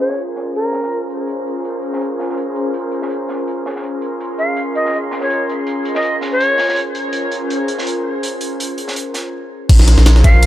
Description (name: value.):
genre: drum and bass, jungle.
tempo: 164 BPM.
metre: 4/4.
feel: swing 54% on 16ths.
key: Bb minor.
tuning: A4 = 440 Hz.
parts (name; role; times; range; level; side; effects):
breathy bright jazz flute; melody; 0.0-1.1, 4.4-6.8, 10.2-10.5 s; Bb4 to F5; -20 LUFS; equal; dub echo.
airy breathy pad; sustained chords; 0.0-10.5 s; Db4 to C6; -21 LUFS; equal; chorus.
crunchy breakbeat drum kit; drums; 0.1-9.2 s; hi-hat, snare drum; -28 LUFS; right 1 dB; high-pass filter on hats, high-pass filter on snare, high-pass filter on room.
saturated sub bass; bass; 9.7-10.5 s; Bb1; -9 LUFS; equal; none.
jungle sampler-style drum kit; drums; 9.7-10.5 s; crash cymbal, hi-hat, kick drum, snare drum; -10 LUFS; equal; none.
room: light reverb, small room ambience.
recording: low-pass filter.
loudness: -15 LUFS.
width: side -14 dB against mid.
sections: 0.0-9.7 A section.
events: filter sweep 0.0-9.7; break 9.3-9.7.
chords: 0.0 Bbm9.